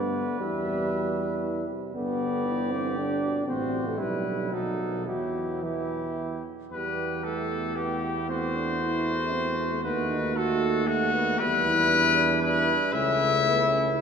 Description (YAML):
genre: classical, brass quintet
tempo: 109-120 BPM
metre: 3/4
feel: rubato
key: E minor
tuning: A4 = 435 Hz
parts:
  - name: bright trumpet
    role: melody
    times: 0.0-14.0 s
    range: F#4 to E5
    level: -28 LUFS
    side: left 4 dB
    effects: none
  - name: warm trumpet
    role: second line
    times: 0.0-14.0 s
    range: D#4 to B4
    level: -34 LUFS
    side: right 6 dB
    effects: none
  - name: mellow French horn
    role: accompaniment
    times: 0.0-14.0 s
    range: E3 to D4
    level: -31 LUFS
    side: equal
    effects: none
  - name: mellow trombone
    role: accompaniment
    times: 0.0-14.0 s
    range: B2 to F#4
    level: -34 LUFS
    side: right 4 dB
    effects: none
  - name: warm tuba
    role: bass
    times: 0.0-14.0 s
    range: G1 to G2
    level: -32 LUFS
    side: right 2 dB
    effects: none
room: wet church reverb, RT60 3.5 s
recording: minimal, uncompressed stereo recording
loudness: -24 LUFS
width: side -6 dB against mid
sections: 0.0-6.7 A section; 6.7-14.0 B section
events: none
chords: 0.4 Em; 1.9 G; 3.5 F#dim/A; 4.0 Em/B; 4.5 B7; 5.1 Em; 8.3 F#m7b5/E; 9.8 B7/D#; 11.4 Em; 12.9 A/C#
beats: | 0.41 0.92 1.42 | 1.94 2.45 2.96 | 3.48 4.00 4.53 | 5.07 5.62 6.17 | 6.71 7.24 7.76 | 8.29 8.81 9.33 | 9.84 10.36 10.87 | 11.40 11.91 12.41 | 12.93 13.43 13.93